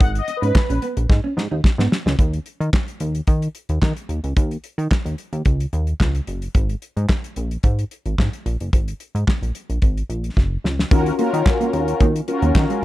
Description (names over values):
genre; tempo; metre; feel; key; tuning
early-eighties boogie funk; 110 BPM; 4/4; straight; Eb minor; A4 = 440 Hz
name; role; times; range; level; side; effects
mellow synth brass; accompaniment; 0.0-0.9, 10.9-12.8 s; Db4 to Gb5; -21 LUFS; left 2 dB; chorus, phaser
mellow electric guitar; riff; 0.0-2.1, 10.9-12.8 s; Ab3 to Eb4; -26 LUFS; right 4 dB; lush chorus
chorused synth bass; bass; 0.0-12.7 s; Gb1 to Eb3; -21 LUFS; equal; none
damped 70s drum kit; drums; 0.0-12.8 s; handclaps, hi-hat, kick drum, snare drum; -18 LUFS; equal; none
room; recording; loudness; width
small room ambience; dark, warm production; -18 LUFS; side -16 dB against mid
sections
0.0-2.2 A section; 2.2-10.9 B section; 10.9-12.8 C section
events
analog polysynth solo 0.0-2.2; drum fill 1.1-2.2, 10.4-10.9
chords
0.0 Abmadd9; 2.2 Eb7(no3); 6.5 Absus2; 10.9 Ebm9